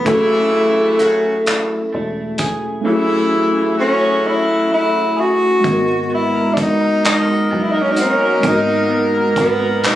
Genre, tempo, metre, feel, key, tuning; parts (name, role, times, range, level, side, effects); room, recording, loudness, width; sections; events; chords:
slow six-eight R&B; 43 BPM (dotted quarters); 6/8; straight; G# phrygian; A4 = 440 Hz
breathy tenor saxophone; melody; 0.0-10.0 s; A3 to F#4; -16 LUFS; equal; slapback echo
clean electric guitar; second line; 0.0-10.0 s; F#3 to A#4; -25 LUFS; right 3 dB; analog chorus
mellow tine electric piano; accompaniment; 0.0-10.0 s; G#3 to D#5; -20 LUFS; equal; medium stereo tremolo
deep dub fingered electric bass; bass; 0.0-10.0 s; E1 to B1; -27 LUFS; equal
clear horn section; stabs; 0.1-10.0 s; C#3 to A#4; -19 LUFS; equal
cloth-damped thuddy drum kit; drums; 0.1-10.0 s; handclaps, hi-hat, kick drum; -20 LUFS; equal
studio reverb; recorded on a phone in the room, compression; -13 LUFS; side -13 dB against mid
0.0-5.6 A section; 5.6-10.0 B section
tenor saxophone solo 0.0-5.6
0.1 F#m9; 5.6 G#m9